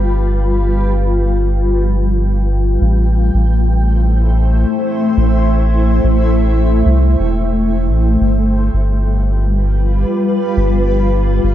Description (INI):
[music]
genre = ambient dub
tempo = 89 BPM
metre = 4/4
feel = swing 57% on 16ths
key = A minor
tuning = A4 = 440 Hz
[part]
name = granular cloud pad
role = sustained chords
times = 0.0-11.5 s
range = G3 to G5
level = -17 LUFS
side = left 1 dB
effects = built-in reverb
[part]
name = soft dub sub bass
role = bass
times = 0.0-11.5 s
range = E1 to C2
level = -13 LUFS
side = equal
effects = none
[sound]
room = little or no reverb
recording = none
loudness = -12 LUFS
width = side -12 dB against mid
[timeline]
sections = 0.0-2.8 A section; 2.8-11.5 B section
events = none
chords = 0.0 G7; 2.8 Am7; 8.2 G7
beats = | 0.12 0.79 1.46 2.14 | 2.81 3.49 4.16 4.83 | 5.51 6.18 6.86 7.53 | 8.21 8.88 9.55 10.23 | 10.90